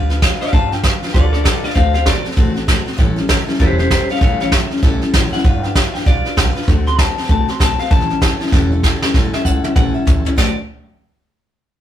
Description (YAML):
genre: rockabilly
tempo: 195 BPM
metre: 4/4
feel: swing 62% on 8ths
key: unclear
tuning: A4 = 440 Hz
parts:
  - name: picked steel-string acoustic guitar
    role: accompaniment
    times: 0.0-10.5 s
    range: A2 to B4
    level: -21 LUFS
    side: left 2 dB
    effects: none
  - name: upright bass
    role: bass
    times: 0.0-10.6 s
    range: E1 to D2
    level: -20 LUFS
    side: equal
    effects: none
  - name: soft brush drum kit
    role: drums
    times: 0.1-10.5 s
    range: crash cymbal, hi-hat, kick drum, snare drum, toms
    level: -15 LUFS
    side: equal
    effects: none
  - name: electric guitar through a small old amp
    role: melody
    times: 0.4-10.6 s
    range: G4 to C6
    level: -21 LUFS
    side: left 3 dB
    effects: none
room: light reverb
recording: rough rehearsal-room recording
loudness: -13 LUFS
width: side -11 dB against mid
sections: 0.0-9.1 A section; 9.1-10.4 B section; 10.4-11.6 C section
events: drum fill 8.5-9.1, 9.1-10.4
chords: 0.0 G7; 1.8 D7; 3.0 A7; 5.4 G7; 6.7 D7; 7.9 A7; 10.4 D7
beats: 0.22 | 0.53 0.84 1.14 1.45 | 1.76 2.07 2.37 2.68 | 2.99 3.30 3.60 3.91 | 4.22 4.53 4.83 5.14 | 5.45 5.76 6.07 6.37 | 6.68 6.99 7.30 7.60 | 7.91 8.22 8.53 8.84 | 9.14 9.45 9.76 10.07 | 10.38